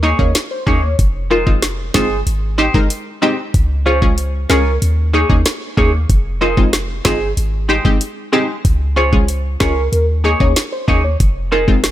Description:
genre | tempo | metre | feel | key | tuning
dancehall | 94 BPM | 4/4 | straight | F minor | A4 = 440 Hz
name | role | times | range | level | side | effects
punchy chord stab | accompaniment | 0.0-11.8 s | Ab3 to Bb4 | -19 LUFS | left 1 dB | chorus
semi-hollow electric guitar | arpeggios | 0.0-11.7 s | Ab3 to Db5 | -21 LUFS | equal | none
clean 808-style bass | bass | 0.0-11.9 s | F1 to Eb2 | -18 LUFS | equal | none
warm velvety synth lead | melody | 0.2-11.7 s | Ab4 to Db5 | -23 LUFS | right 2 dB | chorus, tape echo
island pop drum kit | drums | 0.2-11.9 s | hi-hat, kick drum, rim click, snare drum | -16 LUFS | equal | none
room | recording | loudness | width
digital ambience | none | -13 LUFS | side -13 dB against mid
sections
0.0-11.9 A section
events
none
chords
0.0 Eb7sus4; 1.0 Fm7; 2.3 Abmaj7; 3.5 Db; 4.8 Eb7sus4; 6.1 Fm7; 7.4 Abmaj7; 8.6 Db; 9.9 Eb7sus4; 11.2 Fm7

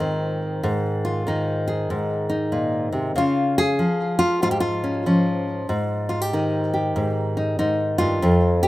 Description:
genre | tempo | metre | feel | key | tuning
folk, solo fingerstyle acoustic guitar | 95 BPM | 4/4 | swing 63% on 8ths | Ab major | A4 = 441 Hz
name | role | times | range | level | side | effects
nylon-string guitar | solo | 0.0-8.7 s | F2 to Ab4 | -20 LUFS | equal | none
room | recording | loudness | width
studio reverb | rough home demo mix | -20 LUFS | side -16 dB against mid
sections
0.0-8.2 A section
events
none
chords
0.0 Abadd9; 3.2 Db; 5.7 Ab5

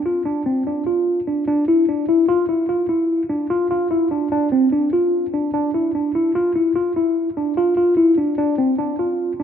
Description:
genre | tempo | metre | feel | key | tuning
progressive instrumental, progressive | 148 BPM | 5/4 | straight | unclear | A4 = 442 Hz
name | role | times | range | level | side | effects
mellow tine electric piano | solo | 0.1-9.4 s | C4 to F4 | -17 LUFS | equal | overdrive, phaser
room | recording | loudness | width
moderate lush hall reverb, RT60 2.5 s | rough home demo mix | -17 LUFS | side -8 dB against mid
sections
0.3-9.4 A section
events
none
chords
none

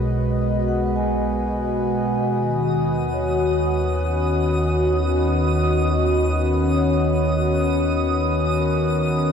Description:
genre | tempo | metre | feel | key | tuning
ambient | 66 BPM | 4/4 | straight | unclear | A4 = 440 Hz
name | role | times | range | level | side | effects
warbly tape-like pad | sustained chords | 0.0-9.3 s | B2 to D#5 | -21 LUFS | left 1 dB | chorus, built-in reverb, shimmer reverb
vibraphone with medium mallets | arpeggios | 0.0-9.3 s | A#4 to G#5 | -28 LUFS | equal | ping-pong delay, shimmer reverb
warm sub bass | bass | 0.0-9.3 s | B1 to D#2 | -25 LUFS | equal | none
hand-pumped harmonium | drone | 0.0-9.3 s | B3 | -34 LUFS | right 2 dB | none
twinkling granular texture | texture | 2.7-9.3 s | D#6 | -29 LUFS | right 2 dB | built-in reverb, shimmer reverb
room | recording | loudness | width
wet huge ambient reverb, RT60 7.7 s | dark, warm production | -18 LUFS | side -7 dB against mid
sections
0.0-9.3 A section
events
none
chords
0.0 G#m7/B; 2.2 D#m7

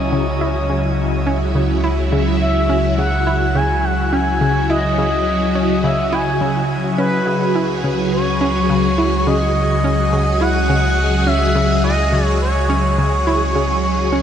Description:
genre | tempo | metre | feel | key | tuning
ambient, sequencer-driven space music | 105 BPM | 4/4 | straight | C# minor | A4 = 440 Hz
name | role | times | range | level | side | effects
expressive synth lead | melody | 0.0-14.2 s | B4 to G#5 | -20 LUFS | equal | chorus, analog delay
phased string machine | sustained chords | 0.0-14.2 s | C#3 to G#4 | -19 LUFS | left 1 dB | ensemble chorus, phaser
analog pluck | riff | 0.0-14.2 s | C#3 to E4 | -22 LUFS | equal | chorus, analog delay
round analog bass | bass | 0.0-14.2 s | C#2 | -21 LUFS | equal | none
room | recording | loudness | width
wet shimmer reverb, RT60 7.8 s | none | -14 LUFS | side -9 dB against mid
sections
0.0-14.2 A section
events
none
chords
0.0 C#m

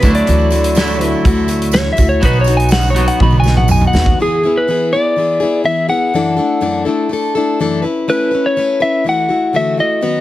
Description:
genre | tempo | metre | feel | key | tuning
folk rock and heartland rock | 123 BPM | 4/4 | straight | E mixolydian | A4 = 438 Hz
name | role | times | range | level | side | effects
electric slide guitar | melody | 0.0-10.2 s | G#4 to B5 | -16 LUFS | equal | none
picked plugged-in steel-string acoustic guitar | accompaniment | 0.0-10.2 s | F#2 to B4 | -17 LUFS | left 3 dB | none
twangy electric guitar | riff | 0.0-4.2 s | B2 to F#4 | -20 LUFS | right 2 dB | spring reverb
upright bass | bass | 0.0-4.1 s | B1 to D#2 | -14 LUFS | right 1 dB | none
loose indie drum kit | drums | 0.0-4.2 s | hi-hat, kick drum, snare drum, toms | -16 LUFS | right 1 dB | none
tambourine | percussion | 0.0-4.1 s | none | -32 LUFS | right 7 dB | none
room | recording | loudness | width
little or no reverb | heavily compressed radio sound | -11 LUFS | side -14 dB against mid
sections
0.0-4.2 A section; 4.2-10.2 B section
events
electric slide guitar solo 0.0-4.2; drum fill 3.2-4.2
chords
0.0 Dadd9; 2.2 B; 4.2 E; 6.1 Dadd9/F#; 7.8 Aadd9; 9.1 Dadd9

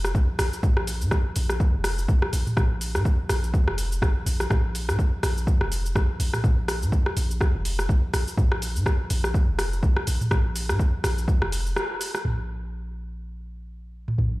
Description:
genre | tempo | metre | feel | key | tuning
afro house | 124 BPM | 4/4 | swing 57% on 16ths | unclear | A4 = 439 Hz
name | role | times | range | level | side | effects
warm 808-style bass | bass | 0.0-14.4 s | F1 to Bb2 | -27 LUFS | equal | sidechain pumping
afro-pop drum kit | drums | 0.0-14.3 s | cabasa, hi-hat, rim click, toms | -28 LUFS | equal | low-pass filter on toms, low-pass filter on hats, low-pass filter on perc, low-pass filter on snare, low-pass filter on cymbals
electronic kick drum | drums | 0.1-11.4 s | none | -22 LUFS | equal | none
room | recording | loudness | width
light reverb | played on a big sound system in a bare room, large studio reverb | -22 LUFS | side -19 dB against mid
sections
0.0-12.2 A section; 12.2-14.4 B section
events
break 11.8-12.2; band accent 11.8; filter sweep on drum 12.2-14.4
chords
none

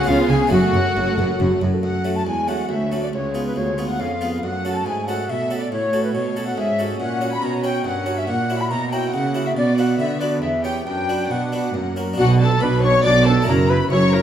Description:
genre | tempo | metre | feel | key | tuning
classical, baroque-style concerto movement with solo episodes | 139 BPM | 3/4 | straight | F# minor, B minor from 7.0 s | A4 = 440 Hz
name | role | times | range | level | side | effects
concert flute | melody | 0.0-14.2 s | E#4 to B5 | -24 LUFS | left 2 dB | none
rich chamber violin section | melody | 0.0-14.2 s | E4 to D6 | -31 LUFS | left 4 dB | none
rich chamber violin section | second line | 0.0-14.2 s | E#4 to B5 | -28 LUFS | left 2 dB | none
harpsichord | accompaniment | 0.0-14.2 s | C#2 to C#5 | -24 LUFS | right 2 dB | none
rich studio viola section | accompaniment | 0.0-14.2 s | F#3 to E4 | -28 LUFS | right 1 dB | none
rich chamber cello section | bass | 0.1-14.2 s | C#2 to D3 | -24 LUFS | right 1 dB | none
rich chamber double bass section | bass | 0.1-1.7, 12.2-14.2 s | F#1 to C#2 | -20 LUFS | right 3 dB | none
room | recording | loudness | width
wet recital hall reverb, RT60 1.5 s | none | -17 LUFS | side -10 dB against mid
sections
0.0-1.8 A section; 1.8-12.2 B section; 12.2-14.2 A section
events
none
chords
0.1 C#7; 0.5 F#m; 3.1 C#7; 4.4 F#m; 5.7 F#m/A; 7.0 F#/A#; 8.3 F#7/A#; 9.6 Bm; 10.4 C#dim/E; 10.9 Bm/F#; 11.8 F#; 12.2 Bm; 13.5 F#5

